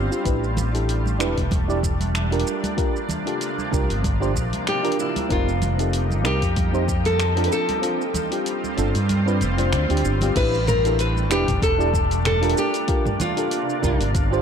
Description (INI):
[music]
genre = sunset chillout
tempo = 95 BPM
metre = 4/4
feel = swing 55% on 16ths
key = A phrygian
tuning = A4 = 443 Hz
[part]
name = mellow FM electric piano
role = accompaniment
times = 0.0-14.4 s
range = C4 to D5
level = -26 LUFS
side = moving between left 2 dB and right 6 dB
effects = chorus, auto-pan, tape echo
[part]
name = shimmering ambient pad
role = sustained chords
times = 0.0-14.4 s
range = C3 to G4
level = -28 LUFS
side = equal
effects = chorus, built-in reverb
[part]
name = fretless electric bass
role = bass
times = 0.0-14.4 s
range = E1 to G2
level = -22 LUFS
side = equal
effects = analog chorus
[part]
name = deep house drum kit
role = drums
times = 0.1-14.4 s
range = crash cymbal, finger snaps, hi-hat, shaker, toms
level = -30 LUFS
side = right 1 dB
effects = overdrive
[part]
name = electronic kick drum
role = drums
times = 0.3-14.3 s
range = none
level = -25 LUFS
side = equal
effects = overdrive
[part]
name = congas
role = percussion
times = 0.6-13.3 s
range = none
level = -33 LUFS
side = right 3 dB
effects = none
[part]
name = nylon-string guitar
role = melody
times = 4.7-14.4 s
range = D4 to B4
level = -24 LUFS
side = left 1 dB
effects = ping-pong delay
[sound]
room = light reverb, digital ambience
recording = dark, warm production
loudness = -19 LUFS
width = side -7 dB against mid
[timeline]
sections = 0.0-10.4 A section; 10.4-14.4 B section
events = kick drops out 7.8-10.4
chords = 0.3 A9sus4; 2.5 C9sus4; 5.3 F9sus4; 7.5 G9sus4; 10.4 A9sus4; 12.6 C9sus4